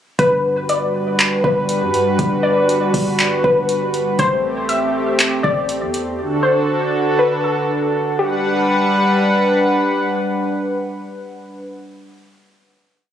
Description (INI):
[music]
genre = hip hop, atmospheric cloud-rap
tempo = 120 BPM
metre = 4/4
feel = half-time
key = G major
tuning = A4 = 440 Hz
[part]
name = warbly dusty pluck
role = melody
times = 0.2-9.7 s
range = G4 to E5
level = -20 LUFS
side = left 2 dB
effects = chorus, tape echo
[part]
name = warm analog pad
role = sustained chords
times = 0.2-11.6 s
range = D3 to F#5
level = -17 LUFS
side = equal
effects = chorus, sidechain pumping
[part]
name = warm 808-style bass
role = bass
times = 0.2-6.2 s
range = G1 to G2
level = -28 LUFS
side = right 1 dB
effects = none
[part]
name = smooth R&B drum kit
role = drums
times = 0.2-6.1 s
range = handclaps, hi-hat, kick drum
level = -19 LUFS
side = equal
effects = none
[sound]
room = moderate lush hall reverb, RT60 1.9 s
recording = recorded on a phone in the room, club reverb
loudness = -15 LUFS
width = side -9 dB against mid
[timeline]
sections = 0.2-8.2 verse; 8.2-12.2 final chord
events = none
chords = 0.2 Gmaj7; 4.2 Am7; 6.2 D; 8.2 Gmaj7